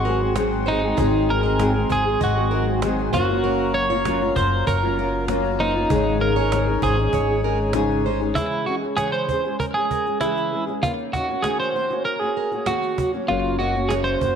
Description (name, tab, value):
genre	acoustic pop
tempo	97 BPM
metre	4/4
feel	straight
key	Ab mixolydian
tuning	A4 = 441 Hz
part	twelve-string electric guitar	melody	0.0-14.4 s	Eb4 to Db5	-23 LUFS	right 2 dB	tremolo, slapback echo
part	felt-muted upright piano	accompaniment	0.0-8.4, 13.3-14.4 s	Gb3 to F5	-31 LUFS	left 14 dB	none
part	nylon-string guitar	accompaniment	0.0-14.4 s	Gb2 to Ab4	-24 LUFS	equal	double-tracked left and right
part	hand-pumped harmonium	sustained chords	0.0-8.3 s	Gb3 to C6	-31 LUFS	left 13 dB	none
part	fingerpicked plugged-in steel-string acoustic guitar	arpeggios	0.0-14.4 s	Ab4 to Eb5	-32 LUFS	right 11 dB	none
part	upright bass	bass	0.0-8.3, 13.3-14.4 s	Gb1 to Ab1	-25 LUFS	left 1 dB	none
part	cajon	drums	0.1-14.4 s	none	-29 LUFS	right 4 dB	none
room	light reverb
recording	1960s-style stereo with parts hard left and right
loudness	-19 LUFS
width	side -7 dB against mid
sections	0.0-8.4 A section; 8.4-14.4 B section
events	none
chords	0.0 Ab7; 3.1 Gbmaj7; 5.9 Absus4; 8.4 Dbm; 10.8 Ebm7; 13.0 Gb